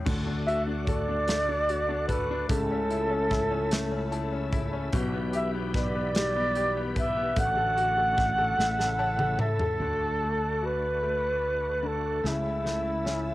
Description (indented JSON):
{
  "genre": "six-eight pop ballad",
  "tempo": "49 BPM (dotted quarters)",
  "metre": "6/8",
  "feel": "straight",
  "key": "D major",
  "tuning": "A4 = 440 Hz",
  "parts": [
    { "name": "bright grand piano", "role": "accompaniment", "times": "0.0-13.3 s", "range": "B2 to A5", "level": "-34 LUFS", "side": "left 5 dB", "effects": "cassette tape" },
    { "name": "bright tonewheel organ", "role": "sustained chords", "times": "0.0-13.3 s", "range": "C#3 to G4", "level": "-38 LUFS", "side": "equal", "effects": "overdrive, chorus vibrato, slow rotary speaker, cassette tape" },
    { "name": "fretless electric bass", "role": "bass", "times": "0.1-13.3 s", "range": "A1 to D2", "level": "-32 LUFS", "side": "equal", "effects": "analog chorus" },
    { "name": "modern studio drum kit", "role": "drums", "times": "0.1-13.3 s", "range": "crash cymbal, hi-hat, kick drum, snare drum, toms", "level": "-31 LUFS", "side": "equal", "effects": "cassette tape" },
    { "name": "mellow flugelhorn", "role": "melody", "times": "0.5-13.3 s", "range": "E4 to F#5", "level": "-27 LUFS", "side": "right 1 dB", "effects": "cassette tape" }
  ],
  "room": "small room ambience",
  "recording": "home recording on cassette",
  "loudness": "-25 LUFS",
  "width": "side -16 dB against mid",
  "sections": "0.1-9.8 A section; 9.8-13.3 B section",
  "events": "grand piano fill 3.7-4.9, 8.6-9.8; drum fill 8.6-9.8, 12.2-13.3",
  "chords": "0.1 D; 2.5 A/C#; 4.9 Em/B; 7.4 D/A; 8.6 A; 9.8 D; 12.2 A/C#"
}